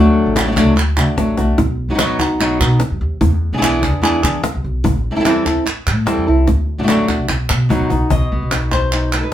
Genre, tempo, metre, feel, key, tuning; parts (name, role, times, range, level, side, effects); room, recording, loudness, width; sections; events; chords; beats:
flamenco; 147 BPM; 4/4; straight; A4 = 440 Hz
flamenco guitar; melody; 0.0-9.3 s; B2 to D#5; -16 LUFS; equal
upright bass; bass; 0.0-9.2 s; A1 to E3; -18 LUFS; equal
cajon; percussion; 0.4-8.9 s; -22 LUFS; left 1 dB
palmas hand claps; percussion; 0.4-9.3 s; -21 LUFS; right 3 dB
wet studio reverb, RT60 0.5 s; band playing live in one room; -13 LUFS; side -11 dB against mid
0.0-8.1 A section; 8.1-9.3 B section
drum fill 1.4, 7.3-8.1
0.0 D; 1.6 B; 3.2 E7; 4.8 Am7; 6.5 D; 7.3 B
0.37 0.78 1.18 | 1.59 2.00 2.40 2.81 | 3.22 3.62 4.03 4.44 | 4.84 5.25 5.66 6.07 | 6.47 6.88 7.29 7.70 | 8.10 8.51 8.92 9.33